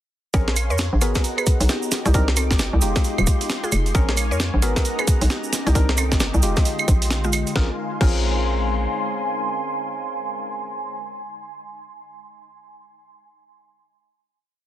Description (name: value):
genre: UK garage, two-step garage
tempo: 133 BPM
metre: 4/4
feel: swing 62% on 16ths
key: Bb minor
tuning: A4 = 441 Hz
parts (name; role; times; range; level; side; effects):
- mallet-like synth pluck; melody; 0.3-11.0 s; Ab3 to Db5; -30 LUFS; equal; chorus, dub echo
- warm analog pad; sustained chords; 0.3-10.5 s; Db5 to D6; -33 LUFS; left 1 dB; chorus, sidechain pumping
- percussive organ stab; stabs; 0.3-11.0 s; Ab3 to Bb4; -29 LUFS; equal; chorus, digital delay
- hollow knocking FM bass; bass; 0.3-8.9 s; Eb1 to F2; -20 LUFS; equal; none
- breakbeat sampler-style drum kit; drums; 0.3-8.2 s; claves, crash cymbal, hi-hat, snare drum; -25 LUFS; right 1 dB; none
- electronic kick drum; drums; 0.3-8.2 s; none; -20 LUFS; equal; none
- cabasa; percussion; 0.3-7.5 s; none; -31 LUFS; right 5 dB; none
- ethereal airy pad; texture; 1.3-10.7 s; Eb4 to C6; -30 LUFS; equal; ensemble chorus, built-in reverb, sidechain pumping
room: light reverb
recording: dense, heavily limited modern master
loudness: -18 LUFS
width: side -12 dB against mid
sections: 0.3-7.6 drop; 7.6-11.2 final chord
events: drop 0.3-7.6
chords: 0.3 Bbm9; 1.0 Abm9; 1.9 Cm9; 2.8 Fm9; 3.9 Bbm9; 4.6 Abm9; 5.5 Cm9; 6.4 Fm9; 7.6 Bbm9